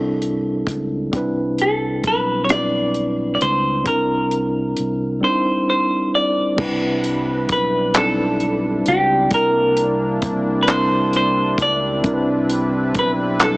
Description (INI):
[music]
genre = slow six-eight R&B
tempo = 44 BPM (dotted quarters)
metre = 6/8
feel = straight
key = C major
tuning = A4 = 437 Hz
[part]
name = semi-hollow electric guitar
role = melody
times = 0.0-13.6 s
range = G4 to G5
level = -19 LUFS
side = equal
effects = slapback echo
[part]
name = mellow tine electric piano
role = accompaniment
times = 0.0-13.6 s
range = G3 to D5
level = -20 LUFS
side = equal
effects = medium stereo tremolo
[part]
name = fingered electric bass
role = bass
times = 0.0-13.6 s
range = B1 to Db2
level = -28 LUFS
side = equal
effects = none
[part]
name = compact cocktail drum kit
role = drums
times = 0.2-13.6 s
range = crash cymbal, handclaps, hi-hat, kick drum, rim click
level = -22 LUFS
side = equal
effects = none
[part]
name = warm analog pad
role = sustained chords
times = 6.6-13.6 s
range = G3 to B4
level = -25 LUFS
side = equal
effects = chorus
[sound]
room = moderate plate reverb, RT60 2.1 s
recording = heavily compressed radio sound, multiband compression, small speaker sound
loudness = -16 LUFS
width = side -22 dB against mid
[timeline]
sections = 0.0-6.6 A section; 6.6-13.6 B section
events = silent gap 5.2-6.6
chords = 0.0 C7; 1.1 Cmaj9; 3.9 C7; 6.6 Cmaj9; 9.3 C7; 12.0 Cmaj9